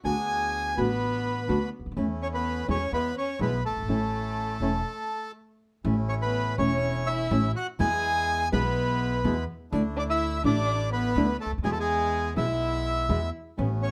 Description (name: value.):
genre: tango.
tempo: 124 BPM.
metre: 4/4.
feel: rubato.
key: A major.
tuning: A4 = 438 Hz.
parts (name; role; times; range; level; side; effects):
bandoneon; melody; 0.0-13.9 s; G#4 to G#5; -31 LUFS; equal; none.
nylon-string guitar; accompaniment; 0.0-13.7 s; B2 to F#4; -30 LUFS; equal; none.
upright bass; bass; 0.0-13.9 s; E1 to E2; -33 LUFS; equal; none.
warm violin; second line; 0.1-13.9 s; G#3 to G#4; -36 LUFS; equal; none.
bandoneon; stabs; 0.1-13.9 s; G#3 to F#4; -40 LUFS; equal; none.
room: moderate studio reverb, RT60 0.8 s.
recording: none.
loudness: -27 LUFS.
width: mono.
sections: 0.0-5.8 A section; 5.8-13.9 B section.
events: stop 4.9-5.8.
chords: 0.0 D6; 2.0 A/E; 2.9 E; 3.9 A; 7.8 E; 9.7 Dsus2; 11.6 E.